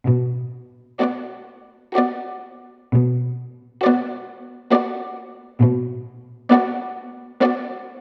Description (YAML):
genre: classical, slow romantic movement for string orchestra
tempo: 62-70 BPM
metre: 3/4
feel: rubato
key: B minor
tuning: A4 = 441 Hz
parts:
  - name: rich symphonic cello section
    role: bass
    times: 0.1-6.3 s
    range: B2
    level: -20 LUFS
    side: equal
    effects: none
  - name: rich studio violin section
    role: melody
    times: 1.0-8.0 s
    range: D5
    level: -27 LUFS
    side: equal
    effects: none
  - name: rich chamber violin section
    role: second line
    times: 1.0-8.0 s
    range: F#4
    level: -28 LUFS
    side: equal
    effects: none
  - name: rich chamber viola section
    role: accompaniment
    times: 1.0-8.0 s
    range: B3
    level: -22 LUFS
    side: equal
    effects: none
room: wet scoring stage reverb, RT60 1.6 s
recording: none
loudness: -21 LUFS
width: mono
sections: 0.1-8.0 A section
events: none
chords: 0.1 Bm